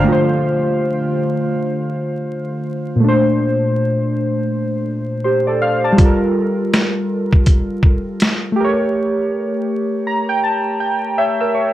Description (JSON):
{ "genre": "lo-fi hip hop", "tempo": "81 BPM", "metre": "4/4", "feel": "swing 61% on 16ths", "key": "unclear", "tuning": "A4 = 444 Hz", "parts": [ { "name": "warbly lo-fi synth keys", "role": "accompaniment", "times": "0.0-11.7 s", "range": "Bb2 to Bb5", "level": "-16 LUFS", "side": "equal", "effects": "chorus" }, { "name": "boom bap sampler-style drum kit", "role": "drums", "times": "6.0-8.4 s", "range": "hi-hat, kick drum, snare drum", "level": "-13 LUFS", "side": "equal", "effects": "vintage 12-bit sampler grit" } ], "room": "wet studio reverb, RT60 0.6 s", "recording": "vinyl crackle", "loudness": "-15 LUFS", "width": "side -14 dB against mid", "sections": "0.1-11.7 A section", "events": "break 8.9-11.7; synth keys fill 9.7-11.7", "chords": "0.1 Dm7; 3.0 Bbmaj9; 6.0 Gm9; 8.6 A7b9" }